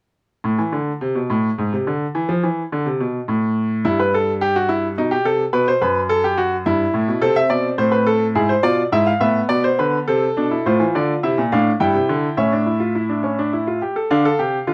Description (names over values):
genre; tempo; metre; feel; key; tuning
classical, baroque-style 3-part fugue for grand piano; 106 BPM; 3/4; straight; A minor, D minor from 10.7 s; A4 = 440 Hz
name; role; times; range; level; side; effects
bright baby grand piano; solo; 0.4-14.7 s; F#2 to G5; -19 LUFS; equal; none
room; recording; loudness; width
light reverb; none; -19 LUFS; mono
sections
0.4-10.7 A section; 10.7-14.1 B section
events
none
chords
0.4 N.C.; 3.8 Em/G; 5.0 B; 5.5 B5; 6.7 Em/G; 7.2 Am; 8.4 E/G#; 8.9 E7/G#; 10.1 Am/C; 10.7 Dm/A; 11.8 Cadd9/G; 12.4 A; 14.1 Dm